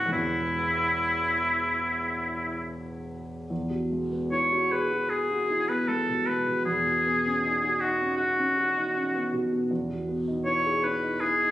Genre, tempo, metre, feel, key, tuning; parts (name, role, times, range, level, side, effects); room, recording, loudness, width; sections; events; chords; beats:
classical, impressionist duo for oboe and grand piano; 69-80 BPM; 4/4; rubato; E major; A4 = 440 Hz
clear oboe; melody; 0.0-11.5 s; E4 to C#5; -25 LUFS; left 1 dB
dark baby grand piano; accompaniment; 0.0-11.5 s; E1 to G#4; -29 LUFS; equal
moderate recital hall reverb, RT60 1.9 s; recorded on a phone in the room, studio reverb, compression; -24 LUFS; side -14 dB against mid
0.0-3.5 A section; 3.5-11.5 B section
0.1 E; 3.5 Eadd9; 6.7 C#m11/E; 9.7 Emaj7
| 0.11 0.97 1.82 2.66 | 3.50 4.31 5.10 5.88 | 6.65 7.43 8.18 8.94 | 9.70 10.46 11.21